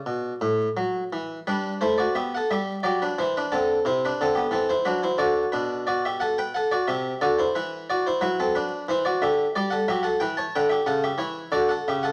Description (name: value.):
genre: classical, baroque-style suite movement for harpsichord.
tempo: 90 BPM.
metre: 3/4.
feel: rubato.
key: G major.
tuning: A4 = 436 Hz.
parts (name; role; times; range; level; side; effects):
harpsichord; solo; 0.0-12.1 s; A2 to A5; -25 LUFS; equal; none.
room: wet large studio reverb, RT60 1.2 s.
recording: vinyl crackle.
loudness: -25 LUFS.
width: mono.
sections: 0.0-1.5 A section; 1.5-12.1 A section.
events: none.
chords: 0.0 D; 1.5 G; 3.5 D7; 5.5 G/B; 7.5 Em; 9.5 G; 10.9 A/C#; 11.5 D.